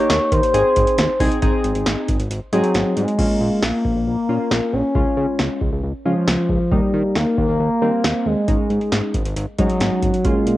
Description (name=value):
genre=synth-pop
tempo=136 BPM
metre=4/4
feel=straight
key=unclear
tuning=A4 = 439 Hz
part: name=expressive synth lead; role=melody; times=0.0-10.6 s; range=F3 to Db5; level=-19 LUFS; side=left 1 dB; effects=chorus, analog delay
part: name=warm analog keys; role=accompaniment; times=0.0-10.6 s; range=G3 to Ab4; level=-23 LUFS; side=equal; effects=chorus, cassette tape
part: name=fat analog bass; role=bass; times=0.1-10.6 s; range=Ab1 to Eb3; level=-23 LUFS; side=equal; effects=none
part: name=electro analog drum machine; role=drums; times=0.1-10.6 s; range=crash cymbal, hi-hat, kick drum, snare drum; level=-22 LUFS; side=equal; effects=none
room=moderate spring reverb, RT60 1.3 s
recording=home recording on cassette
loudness=-16 LUFS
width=side -15 dB against mid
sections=0.0-1.4 A section; 1.4-3.2 B section; 3.2-10.6 C section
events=none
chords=0.0 Eb; 0.5 Ab; 3.2 Bbm7; 5.0 Db; 6.7 Eb; 8.5 Absus4